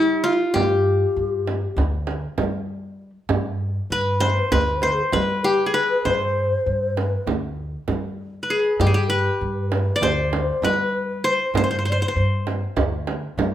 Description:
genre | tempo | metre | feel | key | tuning
Turkish makam ensemble | 196 BPM (eighths) | 9/8 | straight | G makam hicaz | A4 = 441 Hz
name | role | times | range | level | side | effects
qanun | melody | 0.0-13.1 s | E4-40c to D5 | -21 LUFS | left 1 dB | slapback echo
mellow hollow low ney | second line | 0.0-12.2 s | E4-41c to D5 | -25 LUFS | left 2 dB | none
upright bass | bass | 0.0-13.5 s | D2 to G3 | -24 LUFS | equal | none
frame drum | percussion | 0.6-13.5 s | none | -25 LUFS | right 4 dB | none
room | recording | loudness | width
moderate large studio reverb, RT60 1.2 s | band playing live in one room | -19 LUFS | side -11 dB against mid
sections
0.0-13.5 A section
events
none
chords
none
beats
0.25 | 0.56 0.86 1.17 1.47 1.78 2.08 2.39 2.69 3.00 | 3.30 3.61 3.91 4.22 4.52 4.83 5.13 5.44 5.75 | 6.05 6.36 6.66 6.97 7.27 7.58 7.88 8.19 8.50 | 8.80 9.11 9.41 9.72 10.02 10.33 10.63 10.94 11.24 | 11.55 11.86 12.16 12.47 12.77 13.08 13.38

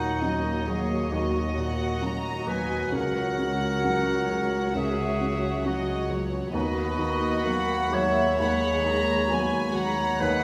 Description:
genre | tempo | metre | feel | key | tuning
cinematic, emotional film score for orchestra | 66 BPM | 4/4 | rubato | B major | A4 = 441 Hz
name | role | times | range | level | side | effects
warm symphonic violin section | melody | 0.0-10.4 s | B4 to A#5 | -36 LUFS | equal | none
mellow clarinet | second line | 0.0-10.4 s | D#4 to C#5 | -31 LUFS | equal | none
warm symphonic violin section | second line | 0.0-10.4 s | C#5 to B5 | -36 LUFS | equal | none
dark symphonic viola section | accompaniment | 0.0-10.4 s | D#3 to G#4 | -35 LUFS | equal | none
felt-muted upright piano | accompaniment | 0.0-10.4 s | C#2 to F#4 | -34 LUFS | equal | none
dark symphonic double bass section | bass | 0.0-10.4 s | C#2 to D#2 | -36 LUFS | equal | none
warm symphonic cello section | bass | 0.0-10.4 s | C#2 to D#2 | -36 LUFS | equal | none
room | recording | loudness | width
wet recital hall reverb, RT60 1.6 s | recorded in a church or concert hall | -26 LUFS | mono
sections
0.0-10.4 A section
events
none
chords
0.0 D#m7; 2.9 F#/C#; 6.5 B/D#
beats
0.22 1.12 2.03 | 2.94 3.85 4.76 5.66 | 6.54 7.46 8.40 9.31 | 10.21

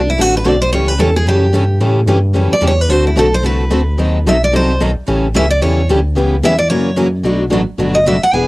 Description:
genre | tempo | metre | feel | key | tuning
acoustic string swing (jazz manouche) | 221 BPM | 4/4 | swing 57% on 8ths | A mixolydian | A4 = 439 Hz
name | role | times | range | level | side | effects
picked steel-string acoustic guitar | melody | 0.0-8.5 s | E4 to G#5 | -15 LUFS | right 1 dB | none
smooth gliding synth bass | bass | 0.0-8.5 s | E1 to A2 | -15 LUFS | equal | none
picked steel-string acoustic guitar | accompaniment | 0.2-8.5 s | B2 to A4 | -16 LUFS | left 2 dB | none
picked steel-string acoustic guitar | accompaniment | 0.2-8.5 s | B2 to B4 | -22 LUFS | right 4 dB | none
room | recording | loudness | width
little or no reverb | home recording on cassette, lossy compression artefacts | -11 LUFS | side -20 dB against mid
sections
0.0-8.5 A section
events
steel-string acoustic guitar solo 0.0-8.5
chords
0.0 D7; 0.7 A7; 2.9 D7; 4.0 D#dim7; 5.1 A7; 6.2 C#m7b5; 6.7 F#7; 7.2 Bm7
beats
0.18 0.45 | 0.72 1.00 1.27 1.54 | 1.81 2.09 2.36 2.63 | 2.90 3.17 3.45 3.72 | 3.99 4.26 4.54 4.81 | 5.08 5.35 5.62 5.89 | 6.17 6.44 6.71 6.98 | 7.25 7.52 7.79 8.06 | 8.33

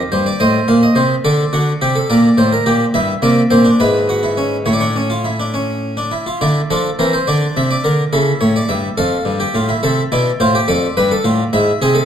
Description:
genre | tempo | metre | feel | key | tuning
classical, baroque-style 3-part fugue for harpsichord | 70 BPM (dotted quarters) | 6/8 | straight | unclear | A4 = 440 Hz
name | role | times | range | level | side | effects
harpsichord | solo | 0.0-12.1 s | F2 to F5 | -13 LUFS | equal | none
room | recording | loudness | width
wet recital hall reverb, RT60 1.5 s | dark, warm production | -13 LUFS | side -9 dB against mid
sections
0.0-6.4 A section; 6.4-12.1 B section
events
none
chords
0.4 Adim; 1.2 D7; 2.1 Gm; 2.9 Edim/G; 3.8 E/G#; 4.7 A; 6.4 Dm; 7.3 C9; 8.1 A7; 9.0 Fmaj9; 9.8 Am; 10.7 Bm7b5/F; 11.5 E/G#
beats
0.40 | 1.25 2.09 | 2.94 3.79 | 4.66 5.54 | 6.41 7.27 | 8.13 8.98 | 9.83 10.68 | 11.52

